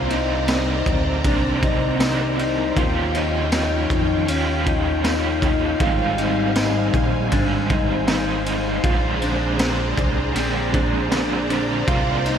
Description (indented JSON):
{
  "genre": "dream pop",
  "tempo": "79 BPM",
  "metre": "4/4",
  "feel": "straight",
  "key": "Eb major",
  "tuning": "A4 = 440 Hz",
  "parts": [
    { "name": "raw garage guitar", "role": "accompaniment", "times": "0.0-12.4 s", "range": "Ab2 to G4", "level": "-26 LUFS", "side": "right 5 dB", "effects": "overdrive, tremolo, analog chorus" },
    { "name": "string machine, violas", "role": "sustained chords", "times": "0.0-12.4 s", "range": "G3 to Bb5", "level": "-25 LUFS", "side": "right 1 dB", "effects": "ensemble chorus" },
    { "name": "mellow electric guitar", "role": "arpeggios", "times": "0.0-12.4 s", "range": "C4 to F4", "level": "-24 LUFS", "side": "left 4 dB", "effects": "lush chorus, ping-pong delay" },
    { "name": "fat analog bass", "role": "bass", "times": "0.0-12.4 s", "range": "Ab1 to F2", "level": "-25 LUFS", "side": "equal", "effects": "none" },
    { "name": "raw garage drum kit", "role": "drums", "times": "0.1-12.4 s", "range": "kick drum, ride cymbal, snare drum, tambourine", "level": "-24 LUFS", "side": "equal", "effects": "gated reverb" }
  ],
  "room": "moderate lush hall reverb, RT60 3.1 s",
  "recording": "bright 1980s-style digital production",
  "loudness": "-18 LUFS",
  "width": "side -8 dB against mid",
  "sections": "0.0-12.4 A section",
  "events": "none",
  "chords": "0.0 Cm9; 2.8 Eb9; 5.8 Abmaj7; 8.8 Bb9; 11.9 Cm9"
}